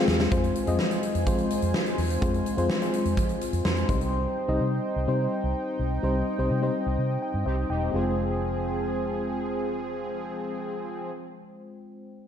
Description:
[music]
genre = 1980s-style pop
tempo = 126 BPM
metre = 4/4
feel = straight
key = F minor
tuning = A4 = 439 Hz
[part]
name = FM electric piano with tremolo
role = accompaniment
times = 0.0-12.3 s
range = G3 to C6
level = -28 LUFS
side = left 3 dB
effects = none
[part]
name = chorused pulse-width pad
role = sustained chords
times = 0.0-11.1 s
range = F3 to Ab5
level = -35 LUFS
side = right 3 dB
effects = none
[part]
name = analog synth brass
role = stabs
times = 0.0-0.2, 7.5-11.1 s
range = F3 to Ab4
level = -32 LUFS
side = equal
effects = chorus
[part]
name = vintage muted fingered electric bass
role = bass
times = 0.1-11.1 s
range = E1 to F3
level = -29 LUFS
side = right 1 dB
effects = none
[part]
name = huge arena drum kit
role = drums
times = 0.1-4.1 s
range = hi-hat, kick drum, snare drum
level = -28 LUFS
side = equal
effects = none
[sound]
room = wet lush hall reverb, RT60 1.7 s, small room ambience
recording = dark, warm production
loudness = -24 LUFS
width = side -8 dB against mid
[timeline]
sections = 0.3-7.9 A section; 7.9-11.7 B section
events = drum fill 0.0-0.3; band accent 0.0-0.3, 6.0-7.9; FM electric piano fill 3.4-4.1, 7.0-7.9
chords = 0.3 Fm; 3.9 Cm; 7.9 Fm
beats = | 0.32 0.79 1.27 1.75 | 2.22 2.70 3.17 3.65 | 4.13 4.60 5.08 5.55 | 6.03 6.51 6.98 7.46 | 7.93 8.41 8.89 9.36 | 9.84 10.32 10.79 11.27

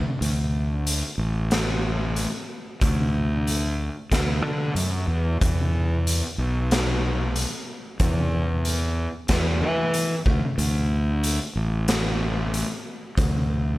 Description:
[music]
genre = classic rock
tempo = 93 BPM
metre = 4/4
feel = straight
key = unclear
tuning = A4 = 440 Hz
[part]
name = fuzz fingered electric bass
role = bass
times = 0.0-13.8 s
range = A1 to E3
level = -23 LUFS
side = equal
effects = overdrive
[part]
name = raw garage drum kit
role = drums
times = 0.2-13.3 s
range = hi-hat, kick drum, snare drum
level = -26 LUFS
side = equal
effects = none
[sound]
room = little or no reverb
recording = none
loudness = -22 LUFS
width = side -18 dB against mid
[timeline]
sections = 0.0-13.8 A section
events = half time 0.0-13.8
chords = none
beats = | 0.22 0.87 1.52 2.17 | 2.81 3.46 4.11 4.76 | 5.41 6.06 6.71 7.35 | 8.00 8.65 9.29 9.94 | 10.59 11.24 11.88 12.53 | 13.18

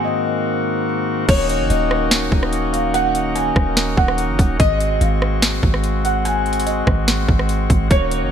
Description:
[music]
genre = hip hop, atmospheric cloud-rap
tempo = 145 BPM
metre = 4/4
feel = half-time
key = unclear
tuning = A4 = 440 Hz
[part]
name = felt-muted upright piano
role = melody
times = 0.0-8.3 s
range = Db5 to Ab5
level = -22 LUFS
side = equal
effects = wide subtle chorus, ping-pong delay
[part]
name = pipe organ, cornet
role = sustained chords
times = 0.0-8.3 s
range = Ab2 to Gb4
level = -21 LUFS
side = left 2 dB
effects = sidechain pumping
[part]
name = warm 808-style bass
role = bass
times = 1.3-8.3 s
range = Eb1 to Ab1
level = -21 LUFS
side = equal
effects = none
[part]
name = trap drum kit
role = drums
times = 1.3-8.2 s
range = crash cymbal, hi-hat, kick drum, rim click, snare drum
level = -18 LUFS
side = equal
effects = overdrive
[sound]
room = light reverb, digital ambience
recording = bright 1980s-style digital production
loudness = -15 LUFS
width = side -8 dB against mid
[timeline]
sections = 0.0-1.3 A section; 1.3-8.3 B section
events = none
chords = 0.0 Ab7; 1.3 Ebm7; 4.6 Ab7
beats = 0.04 0.46 0.87 | 1.29 1.70 2.11 2.53 | 2.94 3.35 3.77 4.18 | 4.60 5.01 5.42 5.84 | 6.25 6.67 7.08 7.49 | 7.91

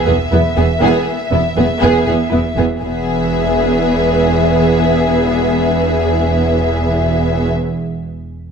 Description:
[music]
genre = cinematic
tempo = 119 BPM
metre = 4/4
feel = straight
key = E major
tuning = A4 = 440 Hz
[part]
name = warm studio violin section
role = melody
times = 0.0-7.5 s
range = E5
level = -21 LUFS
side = left 5 dB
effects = none
[part]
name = warm symphonic violin section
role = second line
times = 0.0-7.5 s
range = E4 to G#4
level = -21 LUFS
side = left 2 dB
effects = none
[part]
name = rich symphonic viola section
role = accompaniment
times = 0.0-7.5 s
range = B3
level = -18 LUFS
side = right 1 dB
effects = none
[part]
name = rich symphonic double bass section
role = bass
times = 0.1-7.5 s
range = E1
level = -19 LUFS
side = right 2 dB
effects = none
[part]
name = warm studio cello section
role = bass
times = 0.1-7.5 s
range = E2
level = -19 LUFS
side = right 3 dB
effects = none
[sound]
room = moderate scoring stage reverb, RT60 1.7 s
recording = none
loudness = -12 LUFS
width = side -6 dB against mid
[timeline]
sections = 0.0-2.8 A section; 2.8-6.9 B section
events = none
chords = 0.0 E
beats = 0.31 | 0.82 1.32 1.82 2.32 | 2.83 3.33 3.83 4.34 | 4.84 5.35 5.85 6.36

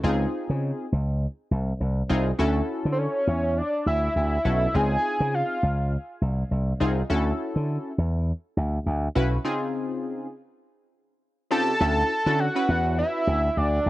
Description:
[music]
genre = early-eighties boogie funk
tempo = 102 BPM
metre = 4/4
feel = swing 56% on 16ths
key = unclear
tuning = A4 = 440 Hz
[part]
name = funky polysynth comp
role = accompaniment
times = 0.0-13.4 s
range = C#3 to B4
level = -28 LUFS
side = left 1 dB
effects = chorus
[part]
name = slap bass with an envelope filter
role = bass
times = 0.0-13.9 s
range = B1 to D3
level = -24 LUFS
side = equal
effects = none
[part]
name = fat analog lead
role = melody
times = 2.9-5.9, 11.5-13.9 s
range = C5 to A5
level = -25 LUFS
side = equal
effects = none
[sound]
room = digital ambience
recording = dry, close 1970s-style studio recording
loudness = -22 LUFS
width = side -16 dB against mid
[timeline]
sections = 0.0-11.8 A section; 11.8-13.9 B section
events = break 9.4-11.8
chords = 0.0 C#maj9; 2.4 Dmaj9; 4.7 C#maj9; 7.1 Dmaj9; 9.4 C#maj9; 11.8 Dmaj9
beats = | 0.04 0.63 1.22 1.80 | 2.39 2.98 3.57 4.16 | 4.74 5.33 5.92 6.51 | 7.10 7.68 8.27 8.86 | 9.45 10.04 10.63 11.21 | 11.80 12.39 12.98 13.57

